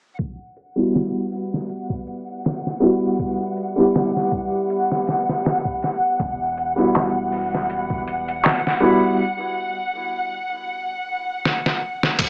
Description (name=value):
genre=trip hop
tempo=80 BPM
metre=4/4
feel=swing 55% on 16ths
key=E minor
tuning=A4 = 440 Hz
part: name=muted studio string section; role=sustained chords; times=0.2-12.2 s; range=F#5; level=-24 LUFS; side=equal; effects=none
part: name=trip hop sampler-style drum kit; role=drums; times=0.2-12.3 s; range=crash cymbal, hi-hat, kick drum, snare drum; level=-23 LUFS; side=equal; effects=low-pass filter on hats, studio reverb, low-pass filter on kick, low-pass filter on snare, low-pass filter on cymbals
part: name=felt-muted upright piano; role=accompaniment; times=0.8-9.2 s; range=G3 to G4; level=-21 LUFS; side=equal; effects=tremolo, vintage 12-bit sampler grit, low-pass filter, tape echo
part: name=soft dub sub bass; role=bass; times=6.2-12.3 s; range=E1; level=-36 LUFS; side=equal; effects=tube saturation
part: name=darbuka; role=percussion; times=6.9-8.6 s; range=none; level=-21 LUFS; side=equal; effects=none
room=small room ambience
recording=dry, gritty hardware recording, cassette tape, low-pass filter, small speaker sound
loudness=-19 LUFS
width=side -35 dB against mid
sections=0.2-12.2 A section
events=filter sweep on felt piano 0.2-12.2; filter sweep 0.2-12.2; break 9.2-12.2; drum fill 11.4-12.2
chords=0.2 Emadd9